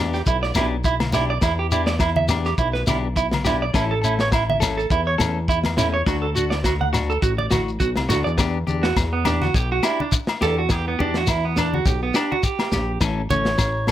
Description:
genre	highlife guitar band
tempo	104 BPM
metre	4/4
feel	swing 55% on 16ths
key	E minor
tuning	A4 = 440 Hz
part	clean electric guitar	accompaniment	0.0-13.9 s	E3 to A4	-27 LUFS	left 6 dB	plate reverb
part	fat analog bass	bass	0.0-13.9 s	A1 to E2	-25 LUFS	equal	none
part	electric guitar at the edge of break-up	arpeggios	0.1-13.9 s	B3 to F#5	-23 LUFS	right 5 dB	slapback echo, plate reverb
part	crunchy breakbeat drum kit	drums	0.1-13.9 s	kick drum, snare drum	-24 LUFS	equal	none
part	shekere	percussion	0.1-13.9 s	none	-26 LUFS	left 2 dB	none
part	agogo bells	percussion	0.6-13.9 s	none	-31 LUFS	left 7 dB	none
part	congas	percussion	0.6-13.9 s	none	-28 LUFS	left 2 dB	none
room	light reverb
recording	none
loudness	-18 LUFS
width	side -12 dB against mid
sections	0.0-8.4 A section; 8.4-13.9 B section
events	clean electric guitar solo 8.4-13.9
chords	0.0 Em7; 3.7 A; 6.1 D; 8.4 Em7; 13.0 A

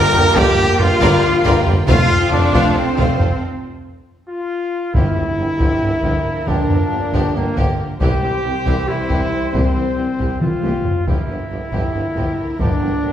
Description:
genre	cinematic, epic orchestral film score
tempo	274 BPM (eighths)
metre	7/8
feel	straight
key	G dorian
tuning	A4 = 438 Hz
part	rich symphonic violin section	melody	0.0-13.1 s	Bb4 to Bb5	-30 LUFS	left 2 dB	none
part	rich symphonic violin section	second line	0.0-13.1 s	F4 to F5	-27 LUFS	left 1 dB	none
part	rich symphonic viola section	accompaniment	0.0-13.1 s	E3 to F4	-28 LUFS	equal	none
part	clear symphonic string section	sustained chords	0.0-3.4 s	Bb3 to G5	-26 LUFS	equal	none
part	warm French horn section	sustained chords	0.0-13.1 s	Bb3 to Bb4	-23 LUFS	left 2 dB	none
part	warm trombone section	sustained chords	0.0-13.1 s	F3 to C4	-27 LUFS	right 1 dB	none
part	clear trumpet	stabs	0.0-13.1 s	Bb3 to Bb4	-23 LUFS	equal	none
part	rich symphonic cello section	bass	0.0-13.1 s	G2 to Bb4	-25 LUFS	right 1 dB	none
part	clear tuba	bass	0.1-13.1 s	F1 to C2	-26 LUFS	right 1 dB	none
part	warm symphonic double bass section	bass	0.1-13.1 s	F1 to C2	-23 LUFS	right 2 dB	none
part	taiko ensemble	drums	0.1-13.0 s	none	-20 LUFS	equal	none
part	timpani	percussion	5.0-5.6 s	G2	-29 LUFS	left 1 dB	none
room	wet recital hall reverb, RT60 1.4 s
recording	heard from further back in the room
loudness	-14 LUFS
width	side -10 dB against mid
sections	0.0-4.9 A section; 4.9-13.1 B section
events	break 3.4-4.9; drum fill 4.3-4.9, 10.4-11.1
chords	0.0 Gm7; 1.9 F; 4.9 Gm7; 8.0 C; 11.1 Gm7

